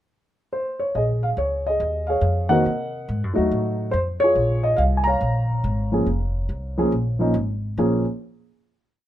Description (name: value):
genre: jazz piano trio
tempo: 140 BPM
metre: 4/4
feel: swing 66% on 8ths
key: Bb minor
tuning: A4 = 440 Hz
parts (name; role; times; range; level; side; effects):
- dark grand piano; melody; 0.5-8.0 s; Eb3 to Bb5; -21 LUFS; equal; none
- upright bass; bass; 0.9-8.0 s; F1 to C3; -24 LUFS; equal; none
room: little or no reverb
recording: minimal, uncompressed stereo recording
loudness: -20 LUFS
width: side -12 dB against mid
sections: 0.0-0.9 pickup bar; 0.9-7.8 A section; 7.8-9.1 final chord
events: none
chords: 0.0 N.C.; 0.9 Bbm7; 2.7 Cm7b5; 3.5 F7b9; 4.4 Bbm7; 7.8 N.C.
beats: 0.09 0.51 | 0.94 1.37 1.80 2.22 | 2.65 3.08 3.50 3.93 | 4.36 4.79 5.21 5.64 | 6.07 6.50 6.92 7.35 | 7.78